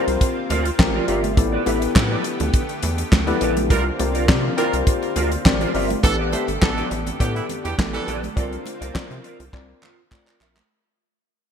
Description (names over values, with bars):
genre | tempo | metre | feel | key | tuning
early-eighties boogie funk | 103 BPM | 4/4 | straight | unclear | A4 = 440 Hz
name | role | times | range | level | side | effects
tine electric piano | accompaniment | 0.0-10.6 s | B3 to G5 | -25 LUFS | left 5 dB | analog chorus
lush unison pad | sustained chords | 0.0-10.7 s | D3 to G4 | -31 LUFS | equal | chorus
mellow electric guitar | riff | 0.0-10.6 s | F4 to E5 | -28 LUFS | right 4 dB | ensemble chorus
rubbery square bass | bass | 0.1-10.6 s | G1 to C3 | -26 LUFS | equal | none
damped 70s drum kit | drums | 0.1-10.7 s | handclaps, hi-hat, kick drum, snare drum | -20 LUFS | equal | gated reverb
congas | percussion | 0.5-10.7 s | none | -32 LUFS | right 7 dB | none
clear horn section | second line | 3.7-8.2 s | B2 to C5 | -28 LUFS | right 3 dB | digital delay
room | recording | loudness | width
light reverb, small room reverb | bright 1980s-style digital production | -18 LUFS | side -8 dB against mid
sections
0.0-6.0 A section; 6.0-10.7 B section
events
tine electric piano fill 0.5-1.4; band accent 3.7-6.0; fade-out 6.0-10.7; drum fill 9.5-10.7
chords
0.0 C9sus4; 1.4 A9sus4; 3.7 C9sus4; 6.0 A9sus4; 8.4 C9sus4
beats
0.21 0.79 | 1.38 1.96 2.54 3.12 | 3.71 4.29 4.87 5.45 | 6.04 6.62 7.20 7.78 | 8.37 8.95 9.53 10.11